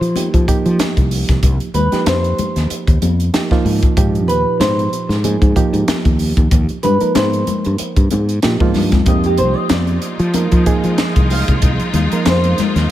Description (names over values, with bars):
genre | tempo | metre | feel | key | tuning
electric jazz fusion | 94 BPM | 4/4 | swing 55% on 16ths | F minor | A4 = 439 Hz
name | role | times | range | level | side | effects
nylon-string guitar | melody | 0.0-12.6 s | G4 to F5 | -20 LUFS | equal | slapback echo
reed electric piano | accompaniment | 0.0-12.9 s | Bb2 to Bb4 | -20 LUFS | right 4 dB | none
fretless electric bass | bass | 0.0-12.9 s | C2 to F3 | -17 LUFS | equal | none
crisp fusion drum kit | drums | 0.0-12.9 s | hi-hat, kick drum, snare drum | -17 LUFS | equal | none
congas | percussion | 0.2-12.8 s | none | -23 LUFS | left 8 dB | none
clear studio string section | sustained chords | 9.1-12.9 s | F3 to F4 | -23 LUFS | left 2 dB | none
room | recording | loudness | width
little or no reverb | none | -13 LUFS | side -13 dB against mid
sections
0.0-12.9 A section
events
nylon-string guitar solo 0.0-12.9; drum fill 8.4-9.1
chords
0.0 F7sus2; 4.0 Abmaj9; 9.1 Fm9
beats
0.16 0.79 | 1.43 2.06 2.70 3.33 | 3.97 4.60 5.24 5.87 | 6.51 7.15 7.79 8.42 | 9.06 9.70 10.34 10.98 | 11.62 12.27 12.91